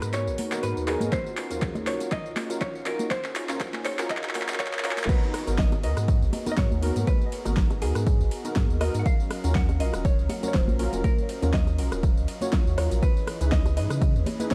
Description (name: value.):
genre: deep house.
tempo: 121 BPM.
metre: 4/4.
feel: swing 54% on 16ths.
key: G# minor.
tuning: A4 = 440 Hz.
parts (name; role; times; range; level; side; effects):
vintage hollow-body jazz guitar; melody; 0.0-14.5 s; G#4 to F#5; -36 LUFS; equal; analog delay.
warm analog pad; sustained chords; 0.0-14.5 s; E3 to A#5; -41 LUFS; equal; subtle chorus, sidechain pumping.
warm analog keys; stabs; 0.0-14.5 s; B3 to A#5; -35 LUFS; equal; chorus, sidechain pumping, tape echo.
warm sub bass; bass; 0.0-14.5 s; D#1 to C#3; -29 LUFS; equal; sidechain pumping.
deep house drum kit; drums; 0.0-14.5 s; crash cymbal, handclaps, hi-hat, ride cymbal, rim click, snare drum, tambourine; -35 LUFS; equal; high-pass filter on snare, studio ambience, high-pass filter on hats, high-pass filter on perc, high-pass filter on cymbals.
congas and bongos; percussion; 0.4-14.5 s; none; -37 LUFS; equal; none.
electronic kick drum; drums; 1.1-14.5 s; none; -27 LUFS; equal; overdrive, studio ambience.
room: light reverb.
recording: echo-heavy mix, vinyl crackle, high-pass filter.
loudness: -25 LUFS.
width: mono.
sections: 0.0-5.1 A section; 5.1-14.5 B section.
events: build-up 0.0-5.1; drum fill 0.0-5.1; filter sweep on synth keys 0.0-5.1; filter sweep 0.0-5.1; drop 5.1-14.5.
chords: 0.0 G#m9; 1.1 D#m9; 5.1 G#m9; 9.1 D#m9; 13.0 C#m9.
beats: 0.13 0.63 | 1.12 1.62 2.12 2.61 | 3.11 3.60 4.10 4.59 | 5.09 5.59 6.08 6.58 | 7.07 7.57 8.07 8.56 | 9.06 9.55 10.05 10.54 | 11.04 11.54 12.03 12.53 | 13.03 13.52 14.02 14.51.